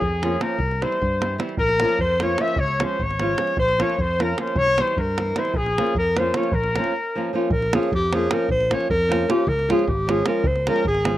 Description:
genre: balkan folk, Balkan wedding band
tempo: 304 BPM (eighths)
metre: 5/8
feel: straight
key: Bb dorian sharp4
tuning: A4 = 435 Hz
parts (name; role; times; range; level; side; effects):
- warm clarinet; melody; 0.0-11.2 s; G4 to E5; -24 LUFS; equal; none
- clear trumpet; second line; 0.0-7.3, 10.7-11.2 s; Ab4 to E5; -25 LUFS; left 2 dB; slapback echo
- mellow fretless electric bass; bass; 0.0-11.2 s; Ab1 to G2; -26 LUFS; equal; none
- davul; percussion; 0.0-11.1 s; none; -27 LUFS; right 1 dB; none
- flamenco guitar; accompaniment; 0.2-11.2 s; E3 to F4; -24 LUFS; equal; none
room: little or no reverb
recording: recorded outdoors, with no room sound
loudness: -19 LUFS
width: side -14 dB against mid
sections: 0.0-7.5 A section; 7.5-11.2 B section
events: break 6.9-7.5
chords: 0.0 Bbm; 0.6 C; 1.6 Bbm; 2.6 Db; 3.6 Bbm; 4.6 C; 5.5 Bbm; 9.5 Db

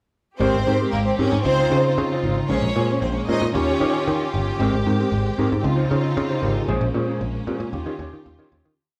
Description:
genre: disco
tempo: 115 BPM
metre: 4/4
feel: straight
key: unclear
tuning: A4 = 441 Hz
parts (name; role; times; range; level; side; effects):
- rich studio violin section; second line; 0.4-4.3 s; Bb3 to Eb5; -26 LUFS; equal; none
- mellow electric guitar; accompaniment; 0.4-8.7 s; C4 to Db5; -29 LUFS; equal; none
- tine electric piano; accompaniment; 0.4-8.8 s; Bb2 to Db5; -27 LUFS; equal; overdrive
- rich studio string section; sustained chords; 0.4-8.8 s; Db3 to G4; -32 LUFS; equal; none
- picked electric bass; bass; 0.4-8.7 s; G1 to Eb3; -26 LUFS; equal; none
room: moderate large studio reverb, RT60 1.1 s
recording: band playing live in one room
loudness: -21 LUFS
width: mono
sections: 0.4-8.8 verse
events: fade-out 6.7-8.8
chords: 0.4 Abmaj9; 1.4 Dbmaj9; 2.5 Bbm9; 3.5 Eb9; 4.6 Abmaj9; 5.6 Dbmaj9; 6.7 Bbm9; 7.7 Eb9

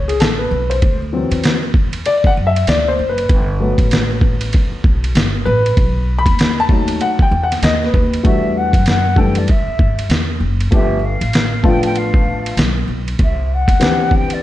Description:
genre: hip hop, jazz-hop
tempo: 97 BPM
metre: 4/4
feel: swing 59% on 16ths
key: E minor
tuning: A4 = 440 Hz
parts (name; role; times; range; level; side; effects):
- dark grand piano; accompaniment; 0.0-14.4 s; C#3 to B5; -18 LUFS; left 2 dB; none
- upright bass; bass; 0.0-14.4 s; F#1 to G2; -19 LUFS; equal; none
- trip hop sampler-style drum kit; drums; 0.1-14.4 s; hi-hat, kick drum, ride cymbal, snare drum; -15 LUFS; equal; none
- mellow jazz flute; melody; 8.3-14.4 s; D5 to G5; -21 LUFS; left 1 dB; none
room: light reverb, small room ambience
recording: none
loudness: -13 LUFS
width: side -14 dB against mid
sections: 0.0-8.2 A section; 8.2-14.4 B section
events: grand piano solo 0.0-8.2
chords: 0.0 Amaj9; 0.8 D7; 3.3 Gmaj9; 5.8 B7; 8.2 Em11; 10.7 G9; 13.2 Cmaj9

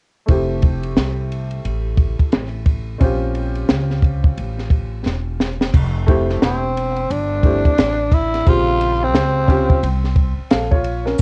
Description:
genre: hip hop, jazz-hop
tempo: 88 BPM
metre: 4/4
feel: swing 61% on 16ths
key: F major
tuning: A4 = 440 Hz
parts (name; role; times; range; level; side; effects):
- warm upright piano; accompaniment; 0.3-11.2 s; Db3 to F5; -26 LUFS; equal; cassette tape
- upright bass; bass; 0.3-11.2 s; E1 to Db2; -24 LUFS; equal; none
- compact cocktail drum kit; drums; 0.3-11.2 s; crash cymbal, hi-hat, kick drum, ride cymbal, snare drum; -18 LUFS; equal; cassette tape
- growling tenor saxophone; melody; 6.4-10.0 s; C4 to F4; -22 LUFS; equal; cassette tape, analog delay
- maracas; percussion; 11.2 s; none; -37 LUFS; equal; none
room: little or no reverb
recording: home recording on cassette, nothing above 10.7 kHz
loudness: -18 LUFS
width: mono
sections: 0.3-5.7 A section; 5.7-11.2 B section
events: drum fill 5.1-5.7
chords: 0.3 Fmaj9; 3.0 Bbm6; 5.7 Fmaj9; 8.5 Bbm6

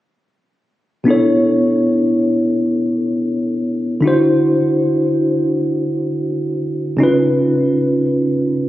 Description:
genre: R&B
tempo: free time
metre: none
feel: none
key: B minor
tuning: A4 = 440 Hz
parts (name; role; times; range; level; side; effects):
- mellow tine electric piano; accompaniment; 1.0-8.7 s; B2 to C#5; -14 LUFS; equal; medium stereo tremolo
room: wet lush hall reverb, RT60 2.9 s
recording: recorded on a phone in the room, studio reverb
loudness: -14 LUFS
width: side -15 dB against mid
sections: 1.1-8.7 A section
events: none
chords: 1.1 Bm11; 4.0 D9; 7.0 C#9

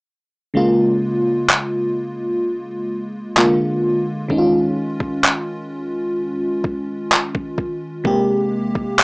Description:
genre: contemporary R&B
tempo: 64 BPM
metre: 4/4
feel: straight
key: Bb dorian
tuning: A4 = 443 Hz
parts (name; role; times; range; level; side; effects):
- FM electric piano with soft pad layer; accompaniment; 0.5-9.0 s; C3 to G4; -18 LUFS; equal; chorus
- dusty soul sampler-style drum kit; drums; 1.5-9.0 s; handclaps, kick drum; -15 LUFS; equal; none
room: light reverb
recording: dry, gritty hardware recording, cassette tape, small speaker sound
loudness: -17 LUFS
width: side -39 dB against mid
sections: 0.5-9.0 A section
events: none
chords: 0.5 Bbm7; 3.4 Bb7; 4.3 Eb9sus4; 8.0 Abmaj9

